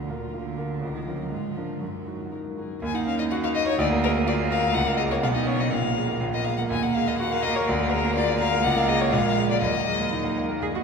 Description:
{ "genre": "quick classical-period movement for piano trio", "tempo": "123 BPM", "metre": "2/4", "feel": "straight", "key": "Eb minor", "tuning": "A4 = 440 Hz", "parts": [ { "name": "warm violin", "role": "melody", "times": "0.0-10.4 s", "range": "F4 to Ab5", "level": "-27 LUFS", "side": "left 6 dB", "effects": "none" }, { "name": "dark cello", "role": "second line", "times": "0.0-10.8 s", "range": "Bb2 to Ab4", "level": "-31 LUFS", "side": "right 5 dB", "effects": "none" }, { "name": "clear concert grand piano", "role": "accompaniment", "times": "0.0-10.8 s", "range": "Bb1 to Eb5", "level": "-25 LUFS", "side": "right 1 dB", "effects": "none" } ], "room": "wet cathedral reverb, RT60 6.4 s", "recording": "recorded in a church or concert hall", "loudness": "-22 LUFS", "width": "side -5 dB against mid", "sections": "0.0-2.8 A section; 2.8-10.6 A section", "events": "none", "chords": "0.0 Bb/D; 0.8 Bbm/Db; 1.3 Bb7/Ab; 1.8 Ebm/Gb; 2.8 Ebm; 3.8 Bb/D; 4.8 Bbm/Db; 5.2 Badd9; 5.7 Bb7(no3); 6.7 Ebm; 7.7 Bb/D; 8.6 Bbm/Db; 9.1 Bb5; 9.6 Ebm", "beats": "0.34 | 0.82 1.31 | 1.81 2.31 | 2.82 3.31 | 3.80 4.28 | 4.75 5.24 | 5.72 6.21 | 6.70 7.19 | 7.68 8.16 | 8.64 9.13 | 9.63 10.13 | 10.63" }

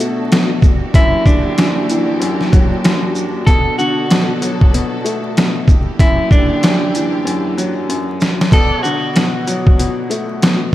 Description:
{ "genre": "hip hop, boom-bap hip-hop", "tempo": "95 BPM", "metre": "4/4", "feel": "swing 61% on 16ths", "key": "B minor", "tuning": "A4 = 440 Hz", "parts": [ { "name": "clean electric guitar", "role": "melody", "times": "0.0-10.6 s", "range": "D4 to A4", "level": "-20 LUFS", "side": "right 2 dB", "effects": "high-pass filter, low-pass filter, diffuse ambient delay" }, { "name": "clear upright piano", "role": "accompaniment", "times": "0.0-10.7 s", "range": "F#2 to A3", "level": "-19 LUFS", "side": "left 2 dB", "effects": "high-pass filter, low-pass filter" }, { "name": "warm studio string section", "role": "sustained chords", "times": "0.0-8.5 s", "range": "A#3 to A4", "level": "-23 LUFS", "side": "right 1 dB", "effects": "high-pass filter, low-pass filter" }, { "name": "trip hop sampler-style drum kit", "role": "drums", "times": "0.0-10.7 s", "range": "hi-hat, kick drum, shaker, snare drum", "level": "-12 LUFS", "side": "equal", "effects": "none" }, { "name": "clear horn section", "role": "stabs", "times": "8.5-9.0 s", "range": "B3 to D5", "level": "-28 LUFS", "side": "equal", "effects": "high-pass filter, low-pass filter, diffuse ambient delay" } ], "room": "moderate lush hall reverb, RT60 1.8 s", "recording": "dreamy mix soaked in reverb, vinyl crackle", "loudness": "-12 LUFS", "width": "side -14 dB against mid", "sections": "0.0-8.5 A section; 8.5-10.7 B section", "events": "drum fill 7.3-8.5", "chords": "0.0 Bm7; 0.6 F#7b9b13; 3.5 Bm7; 5.7 F#7b9b13; 8.5 Bm7", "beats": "0.31 | 0.94 1.58 2.21 2.84 | 3.47 4.10 4.73 5.37 | 6.00 6.63 7.26 7.89 | 8.52 9.15 9.79 10.42" }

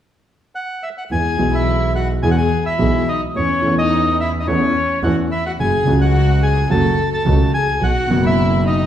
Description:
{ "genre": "tango", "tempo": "107 BPM", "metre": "4/4", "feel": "rubato", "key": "E major", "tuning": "A4 = 441 Hz", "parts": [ { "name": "bandoneon", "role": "melody", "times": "0.6-8.9 s", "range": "C#5 to A5", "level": "-21 LUFS", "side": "equal", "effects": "none" }, { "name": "warm violin", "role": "second line", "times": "1.1-8.9 s", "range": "C#4 to A4", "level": "-24 LUFS", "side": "left 3 dB", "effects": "none" }, { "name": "warm concert grand piano", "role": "accompaniment", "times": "1.1-8.9 s", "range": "F#1 to A4", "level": "-18 LUFS", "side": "equal", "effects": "none" }, { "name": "warm double bass", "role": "bass", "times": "1.1-8.9 s", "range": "F#1 to E2", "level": "-20 LUFS", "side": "right 1 dB", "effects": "none" } ], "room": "wet large studio reverb, RT60 1.3 s", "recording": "heard from further back in the room", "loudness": "-14 LUFS", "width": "side -10 dB against mid", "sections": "0.0-1.1 A section; 1.1-8.9 B section", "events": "none", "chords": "0.0 N.C.; 1.1 E; 3.4 A/E; 5.6 F#m; 7.8 B", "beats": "0.55 | 1.11 1.67 2.23 2.79 | 3.35 3.91 4.47 5.03 | 5.59 6.14 6.70 7.26 | 7.82 8.38" }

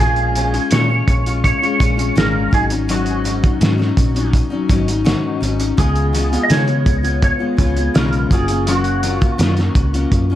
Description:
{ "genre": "indie pop, bedroom pop", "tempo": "83 BPM", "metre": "4/4", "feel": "straight", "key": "Bb minor", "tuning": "A4 = 440 Hz", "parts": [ { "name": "clean lap steel guitar", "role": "melody", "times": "0.0-10.1 s", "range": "Gb4 to Eb5", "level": "-21 LUFS", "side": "right 1 dB", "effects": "ensemble chorus, tape echo" }, { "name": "picked steel-string acoustic guitar", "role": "accompaniment", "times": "0.0-10.4 s", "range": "Ab2 to F4", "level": "-20 LUFS", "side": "left 4 dB", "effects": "lush chorus, vibrato effect" }, { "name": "hollow-body short-scale fingered electric bass", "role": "bass", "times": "0.0-10.4 s", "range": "Gb1 to Db3", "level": "-19 LUFS", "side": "equal", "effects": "none" }, { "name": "cloth-damped thuddy drum kit", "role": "drums", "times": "0.2-10.3 s", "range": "hi-hat, kick drum, snare drum", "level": "-18 LUFS", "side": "right 1 dB", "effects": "none" } ], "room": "light reverb, studio reverb", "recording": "dark, warm production", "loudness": "-14 LUFS", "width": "side -12 dB against mid", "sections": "0.0-10.4 A section", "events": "none", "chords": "0.0 Bbm7; 2.5 Ab7sus4; 5.8 Db7; 8.3 Gbmaj7", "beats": "| 0.00 0.72 1.44 2.17 | 2.89 3.61 4.33 5.06 | 5.78 6.50 7.22 7.95 | 8.67 9.39 10.12" }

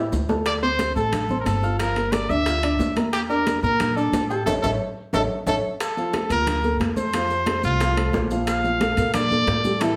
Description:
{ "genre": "latin, salsa", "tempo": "180 BPM", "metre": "4/4", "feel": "straight", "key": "unclear", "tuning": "A4 = 440 Hz", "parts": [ { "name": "dark concert grand piano", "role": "accompaniment", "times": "0.0-10.0 s", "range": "E3 to G6", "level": "-28 LUFS", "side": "equal", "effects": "none" }, { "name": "upright bass", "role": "bass", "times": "0.0-10.0 s", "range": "G1 to Bb2", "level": "-29 LUFS", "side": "equal", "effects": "none" }, { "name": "bongos", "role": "percussion", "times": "0.1-10.0 s", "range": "none", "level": "-35 LUFS", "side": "equal", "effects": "none" }, { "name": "congas", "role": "percussion", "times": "0.1-10.0 s", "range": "none", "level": "-32 LUFS", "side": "equal", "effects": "none" }, { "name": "maracas", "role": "percussion", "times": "0.1-10.0 s", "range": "none", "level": "-45 LUFS", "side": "equal", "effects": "none" }, { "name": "timbales", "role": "percussion", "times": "0.3-10.0 s", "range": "none", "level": "-35 LUFS", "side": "equal", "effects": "none" }, { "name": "clear trumpet", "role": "melody", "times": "0.5-10.0 s", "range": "F4 to F5", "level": "-27 LUFS", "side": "equal", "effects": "none" } ], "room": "wet large studio reverb, RT60 0.8 s", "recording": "heard from further back in the room", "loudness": "-22 LUFS", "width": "mono", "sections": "0.0-5.8 A section; 5.8-10.0 B section", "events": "drum fill 0.0-0.5, 4.5-5.8; band accent 4.5-5.8", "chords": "0.5 Dm7; 1.8 Gm7; 3.1 Em7b5; 4.5 A; 5.8 Bbmaj7; 7.1 F; 8.5 Bbmaj7", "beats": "0.13 | 0.46 0.79 1.13 1.46 | 1.79 2.13 2.46 2.80 | 3.13 3.46 3.80 4.13 | 4.47 4.80 5.13 5.47 | 5.80 6.14 6.47 6.80 | 7.14 7.47 7.81 8.14 | 8.47 8.81 9.14 9.48 | 9.81" }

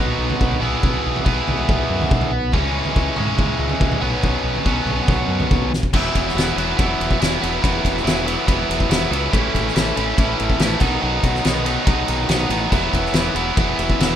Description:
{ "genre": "indie rock", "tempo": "141 BPM", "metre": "4/4", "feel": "straight", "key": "E major", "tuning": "A4 = 440 Hz", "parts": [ { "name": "biting overdriven guitar", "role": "riff", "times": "0.0-14.2 s", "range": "A2 to G#4", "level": "-20 LUFS", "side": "equal", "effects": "none" }, { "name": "growling fingered electric bass", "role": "bass", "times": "0.0-14.2 s", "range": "E1 to G#2", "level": "-24 LUFS", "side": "equal", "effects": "overdrive" }, { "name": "loose indie drum kit", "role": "drums", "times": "0.3-14.1 s", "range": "crash cymbal, kick drum, ride cymbal, snare drum, toms", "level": "-21 LUFS", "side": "equal", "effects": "none" } ], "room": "studio reverb", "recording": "rough home demo mix", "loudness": "-17 LUFS", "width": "side -10 dB against mid", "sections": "0.0-5.9 A section; 5.9-14.2 B section", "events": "drum fill 5.5-5.9", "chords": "0.0 B; 0.6 E/B; 2.5 C#m; 4.0 Bsus2; 5.9 Esus2; 9.3 A; 10.8 B; 12.7 Esus2", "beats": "0.41 | 0.84 1.26 1.69 2.11 | 2.54 2.96 3.39 3.81 | 4.24 4.67 5.09 5.51 | 5.94 6.37 6.79 7.21 | 7.64 8.06 8.49 8.91 | 9.34 9.76 10.19 10.61 | 11.03 11.46 11.88 12.31 | 12.73 13.16 13.58 14.01" }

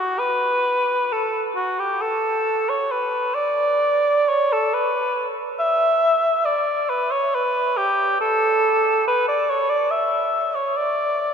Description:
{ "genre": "classical, free, expressive piece for unaccompanied cor anglais", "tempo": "58-74 BPM", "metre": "3/4", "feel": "rubato", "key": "D major", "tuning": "A4 = 441 Hz", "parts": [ { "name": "dark cor anglais", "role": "solo", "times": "0.0-11.3 s", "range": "F#4 to E5", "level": "-18 LUFS", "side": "equal", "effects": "none" } ], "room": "wet cathedral reverb, RT60 6.2 s", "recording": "minimal, uncompressed stereo recording", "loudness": "-18 LUFS", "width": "side -7 dB against mid", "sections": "0.0-11.3 A section", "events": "none", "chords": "none", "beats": "| 0.19 1.10 2.02 | 2.91 3.82 4.73 | 5.59 6.45 7.33 | 8.19 9.07 9.89 | 10.74" }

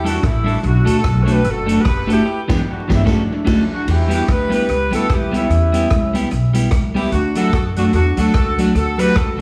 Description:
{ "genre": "ska", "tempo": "148 BPM", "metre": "4/4", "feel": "swing 58% on 8ths", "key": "unclear", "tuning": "A4 = 440 Hz", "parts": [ { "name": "clear horn section", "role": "melody", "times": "0.0-9.4 s", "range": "A3 to C#5", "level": "-23 LUFS", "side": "equal", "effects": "tape echo" }, { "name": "clean electric guitar", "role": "accompaniment", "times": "0.0-9.4 s", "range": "E3 to A4", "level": "-22 LUFS", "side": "equal", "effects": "none" }, { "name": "upright bass", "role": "bass", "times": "0.0-9.4 s", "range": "F#1 to F#2", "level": "-21 LUFS", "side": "equal", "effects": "none" }, { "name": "swinging big-band drum kit", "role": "drums", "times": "0.1-9.3 s", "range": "crash cymbal, hi-hat, kick drum, rim click, snare drum", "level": "-24 LUFS", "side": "equal", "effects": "tape echo" } ], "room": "moderate large studio reverb, RT60 1.2 s, small room reverb", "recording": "vinyl crackle, studio reverb", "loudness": "-16 LUFS", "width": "mono", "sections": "0.0-3.9 A section; 3.9-9.4 B section", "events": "band accent 2.3-3.9", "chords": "0.0 A7sus4; 0.6 Bm7; 2.3 G6; 3.1 Dmaj7; 3.9 Em; 7.1 D", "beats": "0.22 | 0.63 1.04 1.44 1.85 | 2.25 2.66 3.07 3.47 | 3.88 4.29 4.69 5.10 | 5.50 5.91 6.32 6.72 | 7.13 7.54 7.94 8.35 | 8.76 9.16" }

